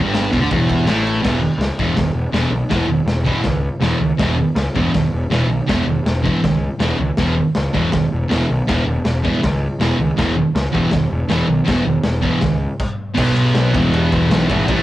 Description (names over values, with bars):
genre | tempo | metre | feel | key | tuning
garage rock duo or trio | 160 BPM | 4/4 | straight | unclear | A4 = 441 Hz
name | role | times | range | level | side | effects
thick fuzz guitar | riff | 0.0-14.8 s | E2 to B3 | -18 LUFS | right 1 dB | distortion
fuzz picked electric bass | bass | 0.0-14.8 s | E1 to D2 | -20 LUFS | equal | overdrive
raw garage drum kit | drums | 0.1-14.8 s | crash cymbal, hi-hat, kick drum, ride cymbal, snare drum | -22 LUFS | left 1 dB | none
room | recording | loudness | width
moderate studio ambience, RT60 0.5 s | rough rehearsal-room recording, warm saturation | -15 LUFS | side -15 dB against mid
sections
0.0-1.2 A section; 1.2-13.2 B section; 13.2-14.8 C section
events
stop 12.8-13.2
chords
0.0 E5; 13.2 B5; 13.7 E